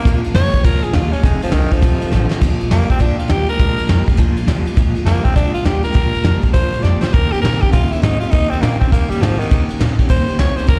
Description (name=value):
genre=rockabilly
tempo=203 BPM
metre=4/4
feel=swing 64% on 8ths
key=Bb mixolydian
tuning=A4 = 441 Hz
part: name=growling tenor saxophone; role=melody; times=0.0-10.8 s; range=Eb3 to D5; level=-24 LUFS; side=equal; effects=none
part: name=picked steel-string acoustic guitar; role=accompaniment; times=0.0-10.8 s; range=F2 to G4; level=-29 LUFS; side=equal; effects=slapback echo
part: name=electric guitar through a small old amp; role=riff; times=0.0-10.8 s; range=F2 to C4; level=-26 LUFS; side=equal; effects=tremolo
part: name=soft brush drum kit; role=drums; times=0.0-10.8 s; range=crash cymbal, kick drum, ride cymbal, snare drum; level=-18 LUFS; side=equal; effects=none
part: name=upright bass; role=bass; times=0.1-10.8 s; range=F1 to Bb2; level=-21 LUFS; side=equal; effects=none
room=little or no reverb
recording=live gig heard through the venue's PA, recital hall reverb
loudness=-15 LUFS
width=mono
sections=0.0-2.4 A section; 2.4-10.8 B section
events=tenor saxophone solo 0.0-2.4; drum fill 2.1, 6.8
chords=0.1 Bb7; 1.2 F7; 2.4 Bb7; 7.1 Eb7